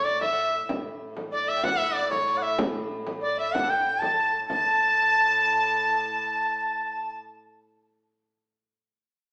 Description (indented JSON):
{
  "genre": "medieval dance",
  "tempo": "126 BPM (dotted quarters)",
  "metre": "6/8",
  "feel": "straight",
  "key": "A mixolydian",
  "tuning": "A4 = 440 Hz",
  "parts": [
    { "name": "bright shawm", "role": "melody", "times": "0.0-7.1 s", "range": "C#5 to A5", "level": "-26 LUFS", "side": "equal", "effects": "slapback echo" },
    { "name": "breathy mellow alto recorder", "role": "second line", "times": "0.0-7.1 s", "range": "C#5 to A5", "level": "-32 LUFS", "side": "equal", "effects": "none" },
    { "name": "rich fiddle", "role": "second line", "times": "0.0-7.2 s", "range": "C#5 to A5", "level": "-35 LUFS", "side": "equal", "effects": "none" },
    { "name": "dark viola da gamba", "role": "drone", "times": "0.0-7.2 s", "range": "A2", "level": "-41 LUFS", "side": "equal", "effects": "none" },
    { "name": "frame drum", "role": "percussion", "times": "0.1-4.6 s", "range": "none", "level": "-35 LUFS", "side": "equal", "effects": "none" }
  ],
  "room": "wet large studio reverb, RT60 1.2 s",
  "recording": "band playing live in one room, small speaker sound",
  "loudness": "-25 LUFS",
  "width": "mono",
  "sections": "0.0-4.5 A section; 4.5-6.4 B section",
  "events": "none",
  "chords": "none"
}